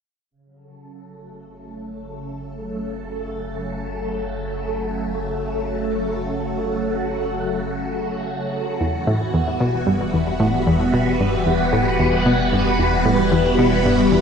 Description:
ambient, sequencer-driven space music; 113 BPM; 4/4; straight; A4 = 440 Hz
phased string machine; sustained chords; 0.3-14.2 s; C#3 to B4; -21 LUFS; equal; ensemble chorus, phaser
round analog bass; bass; 0.3-14.2 s; E1 to F#1; -31 LUFS; equal
analog pluck; riff; 8.8-14.2 s; E2 to B2; -20 LUFS; equal; chorus, ping-pong delay
wet echo chamber reverb, RT60 2.2 s; echo-heavy mix; -18 LUFS; side -6 dB against mid
0.3-14.2 A section
fade-in on string machine 0.3-14.2; fade-in on analog synth bass 0.3-14.2
0.3 F#m; 8.8 Emadd9

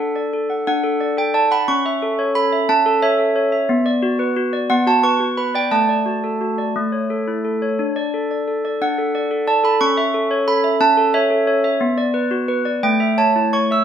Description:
classical, lullaby for handbells; 59 BPM (dotted quarters); 6/8; rubato; D major; A4 = 440 Hz
handbells; solo; 0.0-13.8 s; A3 to E6; -16 LUFS; right 1 dB
moderate studio reverb, RT60 0.7 s; band playing live in one room; -16 LUFS; side -9 dB against mid
0.0-13.8 A section
0.0 D; 1.7 A/C#; 3.7 Bm; 5.7 D/A; 6.8 A; 7.8 D; 9.8 A/C#; 11.8 Bm; 12.8 A

